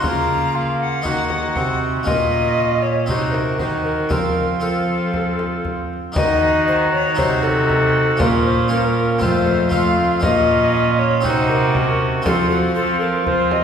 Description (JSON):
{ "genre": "classical, renaissance-style consort dance", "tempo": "118 BPM", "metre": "4/4", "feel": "straight", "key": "Bb harmonic minor", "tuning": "A4 = 440 Hz", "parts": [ { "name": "bright tenor recorder", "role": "melody", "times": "0.0-13.6 s", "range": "Gb4 to Bb5", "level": "-21 LUFS", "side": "left 3 dB", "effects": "none" }, { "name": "warm cor anglais", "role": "second line", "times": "0.0-13.6 s", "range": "F4 to Gb4", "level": "-23 LUFS", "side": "right 4 dB", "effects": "none" }, { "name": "harpsichord", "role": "accompaniment", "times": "0.0-13.6 s", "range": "F2 to Bb4", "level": "-25 LUFS", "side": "equal", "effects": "none" }, { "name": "warm viola", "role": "accompaniment", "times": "0.0-13.6 s", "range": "A3 to Eb4", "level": "-25 LUFS", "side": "left 2 dB", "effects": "none" }, { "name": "rich cello", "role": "bass", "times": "0.0-13.6 s", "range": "F2 to F3", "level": "-22 LUFS", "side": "right 1 dB", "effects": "none" }, { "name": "frame drum", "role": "percussion", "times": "0.0-13.6 s", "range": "none", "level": "-26 LUFS", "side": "equal", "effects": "none" } ], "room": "wet recital hall reverb, RT60 1.7 s", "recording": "recorded in a church or concert hall", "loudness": "-16 LUFS", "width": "side -7 dB against mid", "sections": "0.0-6.2 A section; 6.2-13.6 A section", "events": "none", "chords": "0.0 Bbm/Db; 1.1 Ebm; 2.1 Bbm; 3.1 Cdim; 4.1 F; 6.2 Ebm; 7.2 Cdim; 8.2 Bbm; 9.2 F; 10.2 Bbm; 11.2 Cdim; 12.3 F5" }